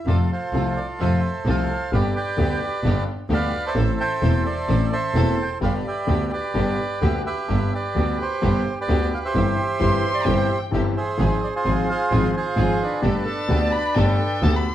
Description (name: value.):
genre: tango.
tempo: 130 BPM.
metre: 4/4.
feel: rubato.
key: unclear.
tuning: A4 = 445 Hz.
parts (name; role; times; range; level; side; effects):
bandoneon; melody; 0.0-14.4 s; D4 to G5; -25 LUFS; right 2 dB; none.
mellow clarinet; second line; 0.0-0.1, 9.8-14.7 s; G4 to D5; -28 LUFS; right 1 dB; none.
warm violin; second line; 0.0-0.1, 9.8-14.7 s; G5 to C6; -29 LUFS; left 3 dB; none.
warm concert grand piano; accompaniment; 0.1-14.6 s; E1 to A4; -24 LUFS; left 2 dB; none.
muted studio string section; stabs; 0.1-14.6 s; B3 to A4; -33 LUFS; equal; none.
clear double bass; bass; 0.1-14.6 s; E1 to F2; -23 LUFS; right 1 dB; none.
room: wet studio reverb, RT60 0.8 s.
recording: heard from further back in the room.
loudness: -19 LUFS.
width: side -12 dB against mid.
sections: 0.1-14.7 A section.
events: none.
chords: 0.1 F; 1.9 G; 3.8 Am; 5.6 G; 9.3 C/G; 11.2 Fm/Ab; 13.0 Gadd9.